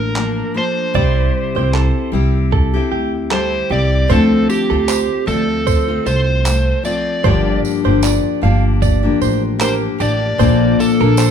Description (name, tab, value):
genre	acoustic pop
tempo	76 BPM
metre	4/4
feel	swing 55% on 16ths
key	unclear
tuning	A4 = 440 Hz
part	overdriven slide guitar	melody	0.0-11.3 s	G4 to D5	-20 LUFS	right 2 dB	none
part	picked steel-string acoustic guitar	accompaniment	0.0-11.3 s	G2 to A4	-18 LUFS	left 6 dB	none
part	upright bass	bass	0.0-11.3 s	G1 to D2	-17 LUFS	right 1 dB	none
part	dusty soul sampler-style drum kit	drums	0.2-11.3 s	handclaps, kick drum	-19 LUFS	right 1 dB	none
part	direct-recorded clean electric guitar	arpeggios	1.0-11.3 s	G4 to F5	-23 LUFS	right 9 dB	none
part	tambourine	percussion	4.1-11.3 s	none	-29 LUFS	right 8 dB	none
room	light reverb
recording	band playing live in one room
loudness	-13 LUFS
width	side -8 dB against mid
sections	0.0-11.3 A section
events	none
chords	0.0 Bbmaj7; 0.9 C; 4.1 Dm7; 7.2 Gm7; 10.4 Bbmaj7